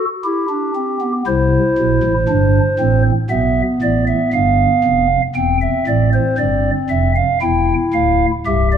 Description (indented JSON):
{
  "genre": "classical, baroque-style 4-part fugue for pipe organ",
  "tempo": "58 BPM",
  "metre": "4/4",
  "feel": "straight",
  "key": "C major",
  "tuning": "A4 = 441 Hz",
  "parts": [
    { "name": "pipe organ, stopped flute", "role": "solo", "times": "0.0-8.8 s", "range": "C1 to G5", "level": "-13 LUFS", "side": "right 1 dB", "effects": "none" }
  ],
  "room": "wet recital hall reverb, RT60 1.8 s",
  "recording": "none",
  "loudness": "-13 LUFS",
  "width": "side -8 dB against mid",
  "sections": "0.0-8.8 A section",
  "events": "none",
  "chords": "0.0 G; 1.3 C; 3.3 G7; 5.4 C/E; 7.4 C",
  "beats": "0.24 | 1.26 2.29 3.31 4.33 | 5.36 6.39 7.42 8.46"
}